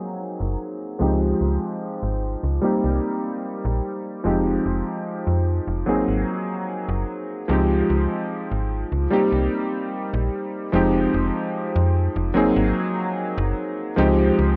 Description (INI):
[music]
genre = vaporwave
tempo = 74 BPM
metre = 4/4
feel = straight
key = F minor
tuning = A4 = 440 Hz
[part]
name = warm electric grand piano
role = accompaniment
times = 0.0-14.6 s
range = F3 to Ab4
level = -24 LUFS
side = equal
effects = analog chorus, vintage 12-bit sampler grit, tape echo
[part]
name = slap-like FM bass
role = bass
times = 0.4-14.6 s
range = F1 to F2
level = -25 LUFS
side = equal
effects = none
[sound]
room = moderate plate reverb, RT60 3.5 s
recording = worn, warbling old tape, cassette tape, warbly pitch drift, low-pass filter, nothing above 10.3 kHz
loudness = -23 LUFS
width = mono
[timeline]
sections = 0.0-10.7 A section; 10.7-14.6 B section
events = filter sweep 0.0-10.7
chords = 0.0 Ab7; 1.0 Dbmaj9#11; 2.6 Cm7; 4.2 Fm9; 5.9 Ab7; 7.5 Dbmaj9#11; 9.1 Cm7; 10.7 Fm9; 12.4 Ab7; 14.0 Dbmaj9#11